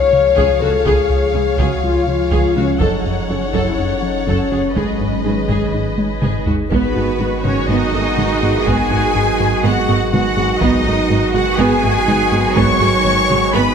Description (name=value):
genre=cinematic, hybrid orchestral and electronic film score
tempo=123 BPM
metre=4/4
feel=straight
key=G# phrygian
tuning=A4 = 440 Hz
part: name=rich symphonic violin section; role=melody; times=0.0-13.7 s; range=B4 to C#6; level=-25 LUFS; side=left 2 dB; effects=none
part: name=rich symphonic violin section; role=second line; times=0.0-13.7 s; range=B4 to C#6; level=-24 LUFS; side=left 4 dB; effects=none
part: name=glassy FM pad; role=sustained chords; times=0.0-13.7 s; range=D#3 to C#5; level=-23 LUFS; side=right 1 dB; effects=ensemble chorus, built-in reverb
part: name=warm French horn section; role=sustained chords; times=0.0-13.7 s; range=G#3 to C#5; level=-21 LUFS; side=left 5 dB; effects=none
part: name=plucky analog bass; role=riff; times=0.0-13.7 s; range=C#2 to G#3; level=-22 LUFS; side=left 1 dB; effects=none
part: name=warm sub bass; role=bass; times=0.0-13.7 s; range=F#1 to C#2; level=-26 LUFS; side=equal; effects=none
part: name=clear symphonic viola section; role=accompaniment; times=0.4-13.7 s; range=G#3 to A4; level=-22 LUFS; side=right 2 dB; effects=none
part: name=soft round pluck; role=arpeggios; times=0.4-13.7 s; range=C#3 to F#4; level=-26 LUFS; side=right 5 dB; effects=none
part: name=rich studio double bass section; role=bass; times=0.4-13.6 s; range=F#1 to C#2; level=-26 LUFS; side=right 5 dB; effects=none
part: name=rich symphonic cello section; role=bass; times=0.4-13.7 s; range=C#2 to C#5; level=-22 LUFS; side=right 2 dB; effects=none
part: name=taiko ensemble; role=drums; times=0.4-13.5 s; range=none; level=-24 LUFS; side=right 1 dB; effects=none
part: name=bright trombone section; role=sustained chords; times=6.7-13.7 s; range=D#3 to G#3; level=-26 LUFS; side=right 5 dB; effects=none
room=moderate scoring stage reverb, RT60 2.0 s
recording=none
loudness=-13 LUFS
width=side -7 dB against mid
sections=0.0-6.7 A section; 6.7-13.7 B section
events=drum fill 6.0-6.7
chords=0.0 C#; 2.8 F#m; 4.8 G#m; 6.7 G#m7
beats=0.37 | 0.86 1.35 1.84 2.33 | 2.81 3.30 3.79 4.28 | 4.76 5.25 5.74 6.23 | 6.71 7.20 7.69 8.18 | 8.67 9.15 9.64 10.13 | 10.62 11.11 11.59 12.08 | 12.57 13.06 13.54